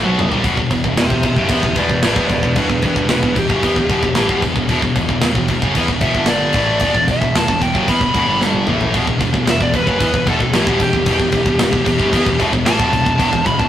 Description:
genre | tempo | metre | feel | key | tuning
heavy metal | 113 BPM | 4/4 | straight | E minor | A4 = 440 Hz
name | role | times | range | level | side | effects
heavy high-gain guitar | riff | 0.0-13.7 s | E2 to B3 | -18 LUFS | equal | distortion
fuzz picked electric bass | bass | 0.0-13.7 s | E1 to E2 | -22 LUFS | equal | overdrive
tight metal drum kit | drums | 0.2-13.7 s | crash cymbal, kick drum, snare drum, toms | -19 LUFS | equal | none
high-gain lead guitar | melody | 1.0-13.7 s | D4 to B5 | -18 LUFS | equal | distortion
room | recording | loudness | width
moderate studio reverb, RT60 0.6 s | rough rehearsal-room recording, tube saturation | -13 LUFS | side -11 dB against mid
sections
0.4-13.7 A section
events
drum fill 0.0-0.4, 8.4-8.9; lead electric guitar solo 0.4-13.7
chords
0.4 Em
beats
| 0.45 0.98 1.51 2.04 | 2.57 3.10 3.63 4.16 | 4.70 5.22 5.76 6.29 | 6.82 7.35 7.88 8.41 | 8.94 9.47 10.01 10.54 | 11.07 11.60 12.14 12.67 | 13.20

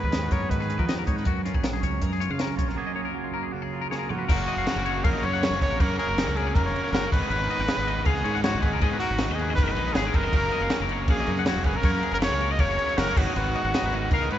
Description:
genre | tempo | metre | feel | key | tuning
math rock and midwest emo | 159 BPM | 4/4 | straight | F# major | A4 = 441 Hz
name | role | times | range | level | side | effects
warm trumpet | melody | 0.0-1.1, 3.9-14.4 s | F#4 to D#5 | -29 LUFS | equal | none
twangy electric guitar | accompaniment | 0.0-5.8 s | F#2 to G#4 | -34 LUFS | right 6 dB | none
twangy electric guitar | arpeggios | 0.0-14.4 s | E#4 to F#5 | -31 LUFS | left 7 dB | none
modern bright fingered electric bass | bass | 0.0-14.4 s | E#1 to E#3 | -30 LUFS | equal | none
compact cocktail drum kit | drums | 0.0-14.4 s | crash cymbal, hi-hat, kick drum, snare drum, toms | -27 LUFS | equal | none
crunchy overdriven guitar | riff | 4.3-14.4 s | F#2 to D#4 | -32 LUFS | right 1 dB | none
room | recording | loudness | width
wet cathedral reverb, RT60 6.0 s | recorded in a church or concert hall, nothing above 7.7 kHz | -22 LUFS | side -11 dB against mid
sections
0.0-4.3 A section; 4.3-14.4 B section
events
break 2.8-4.3; drum fill 3.9-4.3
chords
0.0 G#m9; 1.3 F#maj9/A#; 2.8 F#maj9; 4.3 F#; 7.1 G#m7; 10.3 F#maj7; 13.2 G#m7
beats
0.13 0.51 0.89 | 1.26 1.64 2.02 2.40 | 2.78 3.16 3.54 3.92 | 4.29 4.67 5.05 5.42 | 5.80 6.18 6.56 6.93 | 7.31 7.69 8.07 8.44 | 8.82 9.20 9.58 9.95 | 10.33 10.71 11.09 11.47 | 11.84 12.22 12.60 12.98 | 13.36 13.74 14.12

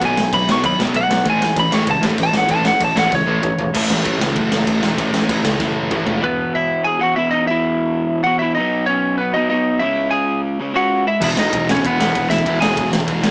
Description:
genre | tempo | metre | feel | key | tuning
punk rock | 193 BPM | 4/4 | straight | E major | A4 = 440 Hz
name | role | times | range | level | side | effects
crunchy overdriven guitar | riff | 0.0-13.3 s | E2 to C#4 | -24 LUFS | equal | none
sludgy distorted guitar | riff | 0.0-6.2, 11.2-13.3 s | E2 to B3 | -26 LUFS | equal | overdrive
modern bright picked electric bass | bass | 0.0-6.2, 11.2-13.3 s | E1 to D#2 | -27 LUFS | equal | none
raw garage drum kit | drums | 0.0-6.1, 11.2-13.3 s | crash cymbal, kick drum, ride cymbal, snare drum, toms | -23 LUFS | equal | none
lightly driven lead guitar | melody | 0.1-3.7, 6.2-12.9 s | B3 to C#6 | -20 LUFS | equal | none
room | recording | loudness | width
light reverb | band playing live in one room, small speaker sound | -18 LUFS | mono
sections
0.0-3.7 A section; 3.7-6.2 B section; 6.2-13.3 C section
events
lead electric guitar solo 0.0-3.7; drum fill 3.1-3.7, 5.6-6.2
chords
0.0 B5; 1.3 A; 3.7 A5; 6.2 E5; 8.6 B; 9.8 C#m; 11.2 E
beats
| 0.01 0.33 0.64 0.95 | 1.26 1.57 1.88 2.19 | 2.50 2.81 3.12 3.44 | 3.75 4.06 4.37 4.68 | 4.99 5.30 5.61 5.92 | 6.23 6.54 6.86 7.17 | 7.48 7.79 8.10 8.41 | 8.72 9.03 9.34 9.65 | 9.96 10.27 10.58 10.89 | 11.21 11.52 11.83 12.14 | 12.45 12.76 13.07

